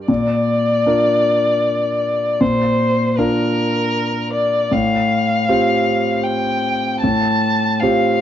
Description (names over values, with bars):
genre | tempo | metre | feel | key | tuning
neoclassical piano and strings | 78 BPM | 3/4 | rubato | unclear | A4 = 440 Hz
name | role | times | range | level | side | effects
clear concert grand piano | accompaniment | 0.0-8.2 s | A2 to Bb4 | -18 LUFS | equal | none
muted violin | melody | 0.1-8.2 s | Bb4 to A5 | -18 LUFS | left 1 dB | plate reverb
room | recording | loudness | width
moderate studio reverb, RT60 0.6 s | dark, warm production, nothing above 7.8 kHz | -15 LUFS | side -10 dB against mid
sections
0.0-8.2 A section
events
none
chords
0.1 Bb; 4.7 Fadd9/A